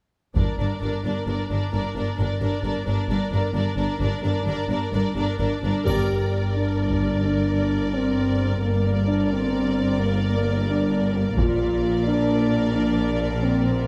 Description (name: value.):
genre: cinematic, epic orchestral film score.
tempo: 87 BPM (dotted quarters).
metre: 12/8.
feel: straight.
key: G minor.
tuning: A4 = 439 Hz.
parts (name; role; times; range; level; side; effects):
rich symphonic violin section; melody; 0.4-13.9 s; D5; -38 LUFS; equal; none.
rich symphonic violin section; second line; 0.4-13.9 s; Bb4 to D5; -36 LUFS; equal; none.
rich symphonic viola section; accompaniment; 0.4-13.9 s; D4 to Bb4; -34 LUFS; equal; none.
rich symphonic cello section; bass; 0.4-13.9 s; G2 to Bb2; -29 LUFS; equal; none.
rich symphonic double bass section; bass; 0.4-13.9 s; G1 to Bb1; -28 LUFS; equal; none.
taiko ensemble; drums; 0.4-1.2, 5.9-7.1, 11.4-12.3 s; none; -28 LUFS; equal; none.
mellow French horn section; sustained chords; 5.9-13.9 s; Bb3 to G4; -27 LUFS; equal; none.
triangle; percussion; 5.9-6.8 s; none; -53 LUFS; equal; none.
room: moderate scoring stage reverb, RT60 1.6 s.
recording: none.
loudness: -23 LUFS.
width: mono.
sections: 0.4-5.9 A section; 5.9-13.9 B section.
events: band accent 5.9-6.3.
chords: 0.4 Gm; 11.4 Bb.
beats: | 0.36 1.05 1.74 2.42 | 3.10 3.78 4.47 5.17 | 5.88 6.57 7.25 7.94 | 8.63 9.32 10.00 10.69 | 11.38 12.06 12.75 13.43.